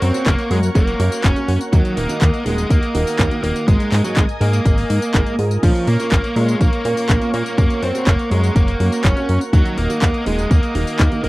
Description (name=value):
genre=italo disco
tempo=123 BPM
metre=4/4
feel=straight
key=unclear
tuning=A4 = 440 Hz
part: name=smooth overdriven lead guitar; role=melody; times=0.0-11.3 s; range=F3 to Db5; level=-21 LUFS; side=equal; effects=vintage 12-bit sampler grit
part: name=lush unison pad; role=sustained chords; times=0.0-11.3 s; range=Bb4 to Eb6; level=-28 LUFS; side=right 1 dB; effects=chorus, vintage 12-bit sampler grit
part: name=warm concert grand piano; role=stabs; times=0.0-11.3 s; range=Ab2 to Bb4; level=-26 LUFS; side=right 3 dB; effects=none
part: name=chorused synth bass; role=bass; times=0.0-11.3 s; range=Eb1 to Bb2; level=-18 LUFS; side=equal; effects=none
part: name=house drum kit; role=drums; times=0.0-11.3 s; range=crash cymbal, handclaps, hi-hat, tambourine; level=-26 LUFS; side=left 1 dB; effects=overdrive
part: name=electronic kick drum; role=drums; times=0.3-11.1 s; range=none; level=-16 LUFS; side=equal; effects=overdrive
room=little or no reverb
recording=dry, close 1970s-style studio recording, vinyl crackle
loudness=-14 LUFS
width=side -19 dB against mid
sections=0.0-11.3 A section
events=none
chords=0.0 Gb; 1.7 Ebm; 3.7 Absus2; 5.6 Bbm; 7.6 Gb; 9.5 Ebm